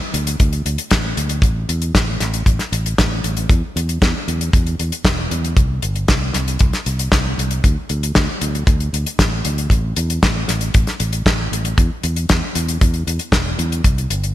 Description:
italo disco; 116 BPM; 4/4; straight; A4 = 440 Hz
fingered electric bass; bass; 0.1-14.3 s; E1 to E2; -21 LUFS; equal
damped 70s drum kit; drums; 0.1-14.3 s; hi-hat, snare drum; -20 LUFS; left 1 dB; studio reverb
kick drum; drums; 0.4-13.9 s; -16 LUFS; equal; studio reverb
light reverb; bright 1980s-style digital production; -15 LUFS; side -14 dB against mid
0.0-14.3 A section
0.40 0.91 | 1.43 1.95 2.47 2.98 | 3.50 4.02 4.54 5.05 | 5.57 6.09 6.60 7.12 | 7.64 8.16 8.67 9.19 | 9.71 10.22 10.74 11.26 | 11.78 12.29 12.81 13.33 | 13.85

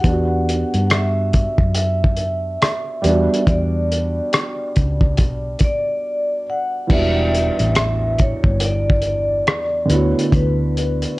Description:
lo-fi hip hop; 70 BPM; 4/4; swing 63% on 16ths; E dorian; A4 = 440 Hz
vibraphone with medium mallets; melody; 0.0-11.2 s; B4 to F#5; -23 LUFS; equal; low-pass filter, plate reverb
felt-muted upright piano; accompaniment; 0.0-11.2 s; E2 to G4; -23 LUFS; right 2 dB; cassette tape, low-pass filter, plate reverb
hollow-body short-scale fingered electric bass; bass; 0.0-11.0 s; E1 to G2; -20 LUFS; equal
cloth-damped thuddy drum kit; drums; 0.0-11.2 s; crash cymbal, hi-hat, kick drum, rim click; -18 LUFS; equal
moderate studio reverb, RT60 0.6 s; cassette tape; -16 LUFS; side -20 dB against mid
0.0-6.9 A section; 6.9-11.2 A section
break 6.0-6.9
0.0 Em7; 9.9 D6
| 0.04 0.90 1.75 2.61 | 3.47 4.33 5.18 6.04 | 6.90 7.75 8.61 9.47 | 10.32 11.18

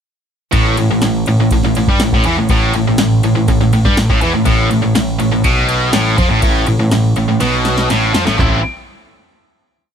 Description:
classic rock; 122 BPM; 4/4; straight; A4 = 442 Hz
tight distorted guitar; riff; 0.5-8.6 s; A2 to E4; -14 LUFS; equal; distortion
growling picked electric bass; bass; 0.5-8.6 s; A1 to G2; -17 LUFS; equal; overdrive
electro analog drum machine; drums; 0.5-8.5 s; handclaps, kick drum, ride cymbal, snare drum, toms; -17 LUFS; equal
little or no reverb; -11 LUFS; side -8 dB against mid
0.5-8.4 riff; 8.4-9.9 final chord
drum fill 7.4-8.4
0.5 A5; 8.4 Am
| 0.53 1.02 1.52 2.01 | 2.50 2.99 3.49 3.98 | 4.47 4.96 5.45 5.94 | 6.43 6.92 7.41 7.90 | 8.39

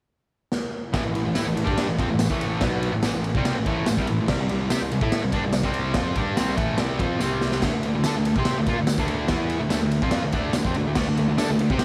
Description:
garage rock duo or trio; 144 BPM; 4/4; straight; A minor; A4 = 440 Hz
raw garage drum kit; drums; 0.5-11.8 s; crash cymbal, kick drum, ride cymbal, snare drum; -28 LUFS; equal
fuzz guitar; riff; 0.9-11.8 s; A2 to C5; -27 LUFS; equal; distortion
fuzz picked electric bass; bass; 0.9-11.8 s; A1 to D3; -31 LUFS; equal; overdrive
tambourine; percussion; 1.4-11.5 s; -41 LUFS; equal
small room ambience; -24 LUFS; mono
0.9-11.8 A section
drum fill 0.5-0.9, 7.2-7.6
0.0 N.C.; 0.9 Am; 4.3 C5; 7.6 D5
0.11 0.53 | 0.95 1.36 1.78 2.20 | 2.62 3.04 3.45 3.87 | 4.29 4.71 5.12 5.54 | 5.96 6.38 6.80 7.22 | 7.63 8.05 8.47 8.89 | 9.31 9.73 10.14 10.56 | 10.98 11.40 11.82

